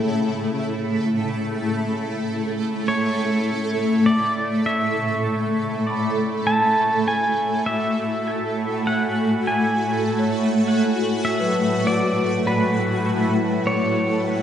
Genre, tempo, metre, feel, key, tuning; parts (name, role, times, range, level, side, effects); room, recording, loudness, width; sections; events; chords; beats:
ambient; 50 BPM; 4/4; straight; A4 = 439 Hz
shimmering ambient pad; sustained chords; 0.0-14.4 s; A2 to F#4; -21 LUFS; equal; chorus, built-in reverb, phaser, shimmer reverb
pedal steel guitar; melody; 2.9-14.4 s; B4 to A5; -24 LUFS; equal; shimmer reverb, dub echo
vibraphone with soft mallets; arpeggios; 5.0-14.4 s; F#3 to C#6; -28 LUFS; equal; shimmer reverb, dub echo
wet spring reverb, RT60 2.6 s; echo-heavy mix, nothing above 10.7 kHz; -19 LUFS; side -9 dB against mid
0.0-14.4 A section
0.0 A; 2.9 F#5/A
0.46 1.66 | 2.86 4.06 5.26 6.46 | 7.66 8.86 10.06 11.26 | 12.46 13.66